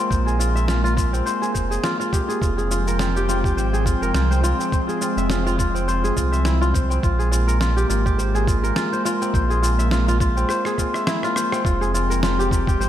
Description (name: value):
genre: organic downtempo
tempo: 104 BPM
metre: 4/4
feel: swing 56% on 16ths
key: F harmonic minor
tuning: A4 = 440 Hz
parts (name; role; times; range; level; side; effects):
- airy breathy pad; sustained chords; 0.0-12.9 s; F3 to G5; -26 LUFS; left 1 dB; chorus, sidechain pumping
- kora; arpeggios; 0.0-12.9 s; C4 to E5; -23 LUFS; equal; tape echo
- warm sub bass; bass; 0.1-12.9 s; F1 to C2; -21 LUFS; equal; tube saturation, sidechain pumping
- electronic cabasa, snare drum and rim click; drums; 0.1-12.9 s; none; -29 LUFS; left 1 dB; small room ambience, analog delay
- electronic kick drum; drums; 0.1-12.8 s; none; -22 LUFS; equal; small room ambience
room: moderate echo chamber reverb, RT60 2.0 s, digital ambience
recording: echo-heavy mix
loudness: -18 LUFS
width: side -11 dB against mid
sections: 0.0-11.6 A section; 11.6-12.9 B section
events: drum fill 10.5-11.6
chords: 0.0 Fm; 7.0 Bb5; 11.6 Fm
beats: | 0.11 0.68 1.26 1.84 | 2.42 2.99 3.57 4.15 | 4.72 5.30 5.88 6.45 | 7.03 7.61 8.18 8.76 | 9.34 9.91 10.49 11.07 | 11.65 12.22 12.80